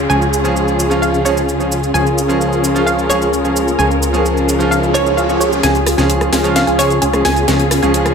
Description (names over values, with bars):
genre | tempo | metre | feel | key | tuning
EDM, festival progressive house | 130 BPM | 4/4 | straight | Db major | A4 = 440 Hz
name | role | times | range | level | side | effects
hollow square pluck | melody | 0.0-8.1 s | Db5 to Ab5 | -20 LUFS | right 1 dB | chorus, ping-pong delay
dark symphonic string section | sustained chords | 0.0-8.1 s | Db3 to Bb4 | -22 LUFS | left 3 dB | low-pass filter
supersaw chords | riff | 0.0-8.1 s | Db4 to Ab4 | -17 LUFS | equal | cassette tape, low-pass filter, ping-pong delay
fat analog bass | bass | 0.0-8.1 s | Db2 | -20 LUFS | left 1 dB | none
downlifter and riser | sound effects | 0.0-8.1 s | none | -26 LUFS | right 1 dB | none
bright concert grand piano | accompaniment | 0.1-8.1 s | F3 to Db5 | -20 LUFS | right 4 dB | ping-pong delay
house drum kit | drums | 0.1-8.1 s | cabasa, hi-hat, rim click, snare drum | -21 LUFS | left 1 dB | studio ambience
wide unison pluck | arpeggios | 5.6-8.1 s | Ab5 | -25 LUFS | right 1 dB | none
room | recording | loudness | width
light reverb, digital ambience | none | -12 LUFS | side -6 dB against mid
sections
0.0-5.6 A section; 5.6-8.1 B section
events
riser 2.0-5.6; build-up 5.6-8.1; drum fill 5.6-8.1; filter sweep on supersaw synth 5.6-8.1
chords
0.0 Db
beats
| 0.10 0.56 1.02 1.48 | 1.94 2.40 2.87 3.33 | 3.79 4.25 4.71 5.17 | 5.63 6.10 6.56 7.02 | 7.48 7.94